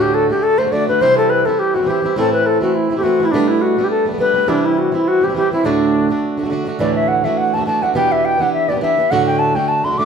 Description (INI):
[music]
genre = celtic folk, Celtic reel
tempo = 207 BPM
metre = 4/4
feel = swing 55% on 8ths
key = D mixolydian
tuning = A4 = 439 Hz
[part]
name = bright reedy baroque flute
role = melody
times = 0.0-10.1 s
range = D4 to D6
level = -15 LUFS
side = left 1 dB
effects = none
[part]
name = fingerpicked plugged-in swing-style acoustic guitar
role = accompaniment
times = 0.0-10.1 s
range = D2 to G4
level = -18 LUFS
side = right 3 dB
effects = none
[sound]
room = moderate large studio reverb, RT60 1.1 s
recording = band playing live in one room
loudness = -14 LUFS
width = side -6 dB against mid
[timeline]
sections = 0.0-6.8 A section; 6.8-10.1 A section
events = none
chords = 0.0 D; 1.0 C; 2.2 Am; 3.3 Gadd9/B; 4.5 C; 5.6 D; 6.8 Dadd9; 8.0 Em7; 9.1 D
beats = 0.15 0.44 0.72 | 1.01 1.30 1.59 1.88 | 2.17 2.46 2.75 3.04 | 3.33 3.62 3.91 4.20 | 4.49 4.78 5.07 5.36 | 5.64 5.93 6.22 6.51 | 6.80 7.09 7.38 7.67 | 7.96 8.24 8.53 8.82 | 9.11 9.40 9.69 9.97